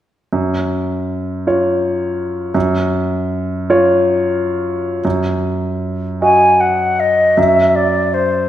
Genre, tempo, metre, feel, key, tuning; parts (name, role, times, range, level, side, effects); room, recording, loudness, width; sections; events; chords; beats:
classical, impressionist duo for flute and grand piano; 41-57 BPM (dotted quarters); 6/8; rubato; A4 = 440 Hz
clear concert grand piano; accompaniment; 0.3-8.5 s; Gb2 to Eb5; -16 LUFS; equal
mellow concert flute; melody; 6.2-8.5 s; C5 to Ab5; -11 LUFS; left 1 dB
wet concert hall reverb, RT60 1.7 s; -13 LUFS; side -12 dB against mid
0.3-5.0 A section; 5.0-8.5 B section
0.3 Gb5; 5.0 Ebm/Gb; 7.4 N.C.
| 0.33 1.48 | 2.55 3.70 | 5.05 6.23 | 7.38